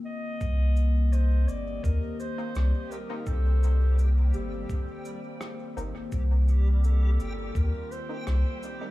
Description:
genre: ambient dub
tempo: 84 BPM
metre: 4/4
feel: straight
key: C dorian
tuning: A4 = 440 Hz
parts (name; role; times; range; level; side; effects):
- warbly tape-like pad; sustained chords; 0.0-8.9 s; D3 to C5; -37 LUFS; left 3 dB; chorus, built-in reverb
- dark clarinet; melody; 0.1-8.9 s; G4 to Eb5; -39 LUFS; equal; dub echo
- soft dub sub bass; bass; 0.4-8.4 s; G1 to Eb2; -23 LUFS; equal; none
- cabasa and rim click; drums; 0.4-8.8 s; none; -46 LUFS; equal; dub echo
- electronic kick drum; drums; 0.4-7.7 s; none; -32 LUFS; equal; none
- backwards swelling texture; texture; 1.4-8.9 s; G3 to G4; -44 LUFS; left 1 dB; built-in reverb
- filtered dub chord stab; stabs; 2.4-8.9 s; Bb3 to Eb4; -42 LUFS; left 1 dB; chorus, dub echo
room: small room ambience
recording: echo-heavy mix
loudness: -24 LUFS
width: side -18 dB against mid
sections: 0.4-8.9 A section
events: break 0.0-0.4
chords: 0.4 Cm7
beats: | 0.41 1.12 1.84 2.55 | 3.27 3.98 4.70 5.41 | 6.12 6.84 7.55 8.27

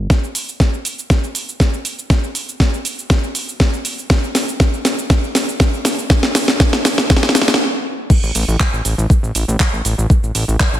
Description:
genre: progressive house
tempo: 120 BPM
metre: 4/4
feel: straight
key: unclear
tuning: A4 = 440 Hz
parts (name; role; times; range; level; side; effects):
- fat analog bass; bass; 0.0-0.1, 8.2-10.8 s; A1; -17 LUFS; equal; sidechain pumping
- electronic kick drum; drums; 0.1-10.7 s; none; -13 LUFS; equal; overdrive
- house drum kit; drums; 0.1-10.8 s; crash cymbal, handclaps, hi-hat, shaker, snare drum; -17 LUFS; equal; none
room: light reverb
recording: none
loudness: -14 LUFS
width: side -12 dB against mid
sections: 0.1-8.1 A section; 8.1-10.8 B section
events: build-up 0.1-8.1; drum fill 0.1-7.6; stop 7.6-8.1; drop 8.1-10.8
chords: none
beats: | 0.10 0.60 1.10 1.60 | 2.10 2.60 3.10 3.60 | 4.10 4.60 5.10 5.60 | 6.10 6.60 7.10 7.60 | 8.10 8.60 9.10 9.60 | 10.10 10.60

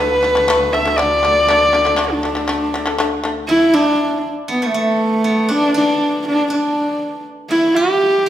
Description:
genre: mongolian traditional, Mongolian folk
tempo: 120 BPM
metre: 4/4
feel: straight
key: D zhi mode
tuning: A4 = 441 Hz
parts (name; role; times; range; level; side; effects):
- warm horsehead fiddle; melody; 0.0-8.3 s; A3 to E5; -15 LUFS; equal; none
- shamisen; arpeggios; 0.0-3.4 s; D3 to A3; -20 LUFS; left 2 dB; none
- clear double bass; drone; 0.0-3.5 s; D2; -28 LUFS; right 1 dB; none
- steel-string zither; second line; 3.5-8.3 s; A3 to G4; -22 LUFS; right 2 dB; none
room: wet recital hall reverb, RT60 1.4 s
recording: minimal, uncompressed stereo recording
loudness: -14 LUFS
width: side -11 dB against mid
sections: 0.0-3.5 A section; 3.5-8.3 B section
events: none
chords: 0.0 D5; 3.5 N.C.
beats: 0.47 0.97 | 1.48 1.98 2.48 2.99 | 3.49 3.99 4.49 4.99 | 5.50 6.00 6.50 7.00 | 7.50 8.00

